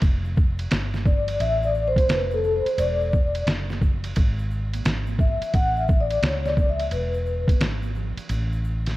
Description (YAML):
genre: hip hop, jazz-hop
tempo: 87 BPM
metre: 4/4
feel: swing 64% on 16ths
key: A major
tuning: A4 = 439 Hz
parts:
  - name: woody fretless electric bass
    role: bass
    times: 0.0-9.0 s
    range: E1 to C#2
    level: -26 LUFS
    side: equal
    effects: none
  - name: lo-fi sampler-style drum kit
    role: drums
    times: 0.0-9.0 s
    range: hi-hat, kick drum, ride cymbal, snare drum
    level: -23 LUFS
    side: equal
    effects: none
  - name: tube shaker and congas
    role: percussion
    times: 0.0-9.0 s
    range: none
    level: -41 LUFS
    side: right 14 dB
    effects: none
  - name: vibraphone with soft mallets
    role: accompaniment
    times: 1.1-7.6 s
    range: A4 to F#5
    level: -24 LUFS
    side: left 2 dB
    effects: none
room: light reverb, digital ambience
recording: dark, warm production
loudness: -20 LUFS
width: side -17 dB against mid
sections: 0.0-9.0 A section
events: vibraphone solo 0.0-9.0; kick muted 8.3-9.0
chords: 0.0 Fadd9; 2.8 E7; 5.5 Amaj9